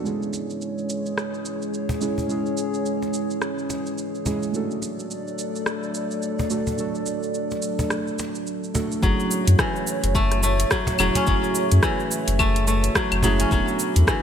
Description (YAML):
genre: organic downtempo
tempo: 107 BPM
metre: 4/4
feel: swing 59% on 16ths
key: F# minor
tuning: A4 = 442 Hz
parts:
  - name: muted felt-like synth keys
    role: accompaniment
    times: 0.0-14.2 s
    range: G#3 to A4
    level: -28 LUFS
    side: right 3 dB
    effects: chorus, sidechain pumping, low-pass filter, digital delay
  - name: warbly tape-like pad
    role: sustained chords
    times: 0.0-14.2 s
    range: E3 to D6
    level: -29 LUFS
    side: equal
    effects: chorus, built-in reverb, sidechain pumping
  - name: afro-pop drum kit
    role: drums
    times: 0.1-14.2 s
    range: claves, hi-hat, rim click, shaker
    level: -27 LUFS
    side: equal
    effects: low-pass filter on perc, low-pass filter on snare, low-pass filter on hats
  - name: cajon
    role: percussion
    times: 0.3-13.8 s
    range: none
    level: -30 LUFS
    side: equal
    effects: none
  - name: kora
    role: arpeggios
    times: 9.0-14.2 s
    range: E3 to C#4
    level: -24 LUFS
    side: left 1 dB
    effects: digital delay
  - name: warm sub bass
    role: bass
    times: 9.0-14.0 s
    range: E1 to F#2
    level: -20 LUFS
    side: left 1 dB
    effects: sidechain pumping
  - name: electronic kick drum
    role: drums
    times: 9.0-14.2 s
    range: none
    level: -25 LUFS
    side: left 1 dB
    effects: none
room: moderate lush hall reverb, RT60 2.2 s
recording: bright 1980s-style digital production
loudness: -21 LUFS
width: side -8 dB against mid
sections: 0.0-9.0 A section; 9.0-14.2 B section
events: none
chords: 0.1 C#m; 4.5 D; 9.0 F#m7; 13.5 E7sus4